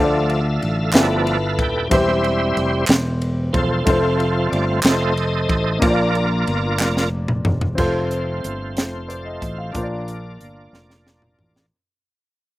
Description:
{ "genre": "slow gospel", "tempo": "61 BPM (dotted quarters)", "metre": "6/8", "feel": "straight", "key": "Bb major", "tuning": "A4 = 440 Hz", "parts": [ { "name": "warm concert grand piano", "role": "accompaniment", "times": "0.0-11.7 s", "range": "G2 to F5", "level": "-24 LUFS", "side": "left 2 dB", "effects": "none" }, { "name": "bright tonewheel organ", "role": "sustained chords", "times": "0.0-11.7 s", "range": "F3 to A5", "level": "-22 LUFS", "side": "right 1 dB", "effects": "slow rotary speaker, overdrive, chorus vibrato" }, { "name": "fingered electric bass", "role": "bass", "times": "0.0-11.7 s", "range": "Eb1 to D2", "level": "-23 LUFS", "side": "equal", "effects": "none" }, { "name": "crisp fusion drum kit", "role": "drums", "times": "0.3-11.7 s", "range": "crash cymbal, hi-hat, kick drum, ride cymbal, snare drum, toms", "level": "-20 LUFS", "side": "equal", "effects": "none" }, { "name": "group handclap", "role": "percussion", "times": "0.9-7.1 s", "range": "none", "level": "-24 LUFS", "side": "right 3 dB", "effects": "none" } ], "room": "little or no reverb", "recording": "recorded outdoors, with no room sound", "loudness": "-17 LUFS", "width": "side -16 dB against mid", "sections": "0.0-7.8 A section; 7.8-11.7 B section", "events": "tonewheel organ solo 0.0-7.8; drum fill 6.8-7.8, 10.7-11.7; fade-out 7.8-11.7", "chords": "0.0 Dm; 0.9 G13; 1.9 C/E; 3.9 F; 5.8 Bb; 7.8 F; 9.7 Bb" }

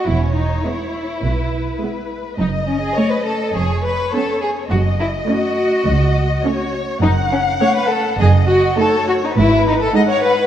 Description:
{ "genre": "quick classical-period movement for string orchestra", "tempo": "103 BPM", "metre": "4/4", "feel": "straight", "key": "unclear", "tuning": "A4 = 440 Hz", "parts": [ { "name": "warm symphonic violin section", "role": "melody", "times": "0.0-10.5 s", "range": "B4 to F#5", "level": "-23 LUFS", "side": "left 3 dB", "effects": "none" }, { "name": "rich chamber violin section", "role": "second line", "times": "0.0-10.5 s", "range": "C#4 to D#5", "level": "-18 LUFS", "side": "left 1 dB", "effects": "none" }, { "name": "rich symphonic cello section", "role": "bass", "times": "0.1-9.8 s", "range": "C#2 to B2", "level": "-22 LUFS", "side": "right 2 dB", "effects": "none" }, { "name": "rich symphonic double bass section", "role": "bass", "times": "0.1-9.8 s", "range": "E1 to C#2", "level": "-20 LUFS", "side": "right 2 dB", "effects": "none" }, { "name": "warm symphonic viola section", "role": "accompaniment", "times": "0.7-10.4 s", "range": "G#3 to D#4", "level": "-22 LUFS", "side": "right 2 dB", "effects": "none" } ], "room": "wet concert hall reverb, RT60 2.2 s", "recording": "none", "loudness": "-15 LUFS", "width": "side -10 dB against mid", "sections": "0.0-10.5 A section", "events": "none", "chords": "0.1 E; 2.4 F#m; 3.6 C#7/E#; 4.7 F#m; 8.2 D#dim/F#; 9.4 G#m" }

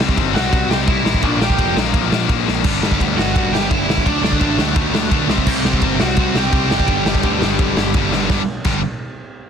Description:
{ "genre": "punk rock", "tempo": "170 BPM", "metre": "4/4", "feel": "straight", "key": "unclear", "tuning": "A4 = 440 Hz", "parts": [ { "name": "cranked stack guitar", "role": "riff", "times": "0.0-8.8 s", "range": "G2 to G4", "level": "-24 LUFS", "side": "left 1 dB", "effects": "overdrive" }, { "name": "distorted electric guitar", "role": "riff", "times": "0.0-8.8 s", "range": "G2 to D4", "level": "-21 LUFS", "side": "left 18 dB", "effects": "overdrive" }, { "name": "growling picked electric bass", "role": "bass", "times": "0.0-8.8 s", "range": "F1 to D2", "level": "-23 LUFS", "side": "equal", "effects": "overdrive" }, { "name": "raw garage drum kit", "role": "drums", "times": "0.0-8.7 s", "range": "crash cymbal, kick drum, ride cymbal, snare drum", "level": "-19 LUFS", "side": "equal", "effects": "none" }, { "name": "lead guitar through a small cranked amp", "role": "melody", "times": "0.3-7.9 s", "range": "D4 to G5", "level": "-22 LUFS", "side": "right 2 dB", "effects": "overdrive" }, { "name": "sludgy distorted guitar", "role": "riff", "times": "2.6-8.8 s", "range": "G2 to D4", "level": "-23 LUFS", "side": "right 14 dB", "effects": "overdrive" } ], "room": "little or no reverb", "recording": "dense, heavily limited modern master", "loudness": "-14 LUFS", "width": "side -7 dB against mid", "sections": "0.0-8.3 A section; 8.3-9.5 B section", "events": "drum fill 2.5, 8.1", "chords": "0.0 C; 1.2 Bb; 2.6 G; 4.1 D; 5.3 C; 6.9 G" }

